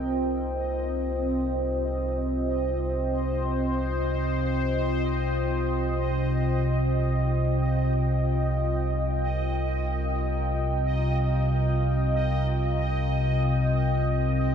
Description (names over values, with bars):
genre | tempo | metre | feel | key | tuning
dark ambient drone | free time | none | none | C minor | A4 = 440 Hz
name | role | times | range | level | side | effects
sweeping resonant pad | sustained chords | 0.0-14.5 s | C4 to G5 | -28 LUFS | equal | chorus
deep rumbling drone | drone | 0.0-14.5 s | C2 to C3 | -26 LUFS | equal | built-in reverb
bubbling stepped-filter texture | texture | 0.0-14.5 s | Eb5 | -35 LUFS | right 2 dB | chorus, built-in reverb
room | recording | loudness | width
wet huge ambient reverb, RT60 8.0 s | in a vast, echoing space | -24 LUFS | side -8 dB against mid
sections
0.0-14.5 A section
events
fade-in on synth texture 0.0-14.5; fade-out on analog synth pad 0.0-14.5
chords
0.0 Cm